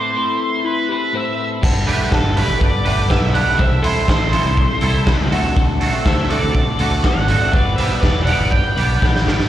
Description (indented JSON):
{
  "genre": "indie rock",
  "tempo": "122 BPM",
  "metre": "4/4",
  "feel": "straight",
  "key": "G major",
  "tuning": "A4 = 439 Hz",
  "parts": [
    { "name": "octave-fuzz lead guitar", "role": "melody", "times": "0.0-9.2 s", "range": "A4 to G5", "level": "-22 LUFS", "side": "right 2 dB", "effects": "distortion, slapback echo, tape echo" },
    { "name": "chorused pulse-width pad", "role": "sustained chords", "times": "0.0-9.5 s", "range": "A4 to D6", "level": "-32 LUFS", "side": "equal", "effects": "none" },
    { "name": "twelve-string electric guitar", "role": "riff", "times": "0.0-9.5 s", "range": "A2 to B4", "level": "-24 LUFS", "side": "left 6 dB", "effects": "slapback echo" },
    { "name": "soft synth bell", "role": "second line", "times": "0.6-9.2 s", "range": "D4 to D5", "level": "-29 LUFS", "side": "right 1 dB", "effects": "chorus, slapback echo" },
    { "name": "growling fingered electric bass", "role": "bass", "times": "1.6-9.5 s", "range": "E1 to D2", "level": "-19 LUFS", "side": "equal", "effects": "overdrive" },
    { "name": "raw garage drum kit", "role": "drums", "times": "1.6-9.5 s", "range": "crash cymbal, hi-hat, kick drum, snare drum", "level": "-18 LUFS", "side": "equal", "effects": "none" },
    { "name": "twangy electric guitar", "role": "riff", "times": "1.9-9.5 s", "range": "G3 to B4", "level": "-24 LUFS", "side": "right 5 dB", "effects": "ensemble chorus, slapback echo" }
  ],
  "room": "small room ambience",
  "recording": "live gig heard through the venue's PA, recital hall reverb, faint mains hum",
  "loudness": "-14 LUFS",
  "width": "side -12 dB against mid",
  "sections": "0.0-9.5 A section",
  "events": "drum fill 9.0-9.5",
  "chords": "0.0 Amadd9; 1.6 Gadd9; 3.6 C6; 5.3 D7; 7.5 G"
}